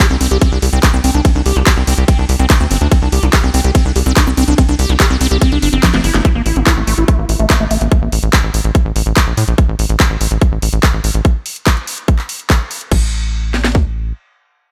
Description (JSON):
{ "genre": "psychedelic trance", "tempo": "144 BPM", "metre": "4/4", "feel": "straight", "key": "A phrygian", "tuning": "A4 = 440 Hz", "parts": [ { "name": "liquid acid bass", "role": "riff", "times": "0.0-7.9 s", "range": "A3 to G4", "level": "-20 LUFS", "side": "equal", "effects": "phaser, sidechain pumping, analog delay" }, { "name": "drum and bass drum kit", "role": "drums", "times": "0.0-13.8 s", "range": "kick drum, snare drum", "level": "-14 LUFS", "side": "equal", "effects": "overdrive, small room ambience" }, { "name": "drum and bass drum kit", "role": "drums", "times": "0.0-13.0 s", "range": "crash cymbal, handclaps, hi-hat, ride cymbal, snare drum, toms", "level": "-21 LUFS", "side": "equal", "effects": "overdrive, small room ambience" }, { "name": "tight sequencer bass", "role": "bass", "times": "0.1-14.1 s", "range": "G1 to A2", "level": "-17 LUFS", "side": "equal", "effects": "none" } ], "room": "light reverb", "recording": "none", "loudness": "-13 LUFS", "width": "mono", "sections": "0.0-6.2 A section; 6.2-12.9 B section; 12.9-14.7 C section", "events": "drop 0.0-6.2; drum fill 5.8-6.2; filter sweep on acid bass 6.2-7.9", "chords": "0.0 C5; 6.2 A5; 12.9 N.C." }